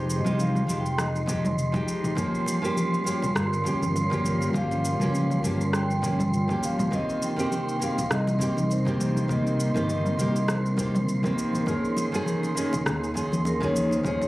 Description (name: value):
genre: sunset chillout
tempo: 101 BPM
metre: 4/4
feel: swing 56% on 16ths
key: unclear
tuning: A4 = 441 Hz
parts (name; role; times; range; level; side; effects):
- vibraphone with soft mallets; melody; 0.0-14.3 s; Bb4 to G5; -32 LUFS; left 1 dB; ping-pong delay
- nylon-string guitar; accompaniment; 0.0-14.3 s; Eb3 to Ab4; -29 LUFS; equal; auto-pan
- soft string machine; sustained chords; 0.0-14.3 s; C3 to Bb4; -32 LUFS; equal; ensemble chorus
- modern bright fingered electric bass; bass; 0.0-14.3 s; F1 to Eb2; -27 LUFS; equal; none
- wind-like tuned noise texture; texture; 0.0-14.3 s; C6; -34 LUFS; right 3 dB; built-in reverb
- deep house drum kit; drums; 0.1-14.3 s; cabasa, rim click, toms; -32 LUFS; equal; overdrive
- congas; percussion; 0.3-14.3 s; none; -32 LUFS; left 1 dB; none
- electronic kick drum; drums; 1.3-14.2 s; none; -34 LUFS; equal; overdrive
room: moderate scoring stage reverb, RT60 1.5 s, digital ambience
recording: recorded on a phone in the room, club reverb, compression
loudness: -23 LUFS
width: side -18 dB against mid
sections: 0.0-14.3 A section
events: none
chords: 0.0 Fm9; 2.2 Gm7b5; 6.9 Cm7; 11.7 Eb7sus4